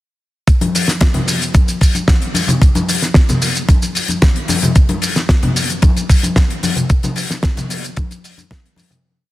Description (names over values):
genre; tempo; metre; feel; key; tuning
nu-disco; 112 BPM; 4/4; straight; none; none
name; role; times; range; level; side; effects
damped 70s drum kit; drums; 0.5-9.0 s; hi-hat, shaker, snare drum; -18 LUFS; left 1 dB; studio reverb
electronic kick drum; drums; 0.5-8.6 s; none; -12 LUFS; equal; studio reverb
congas; percussion; 0.6-9.0 s; none; -19 LUFS; left 2 dB; none
room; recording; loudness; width
light reverb, small room reverb; dense, heavily limited modern master; -12 LUFS; side -16 dB against mid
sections
0.5-9.0 groove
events
fade-out 6.2-9.0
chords
none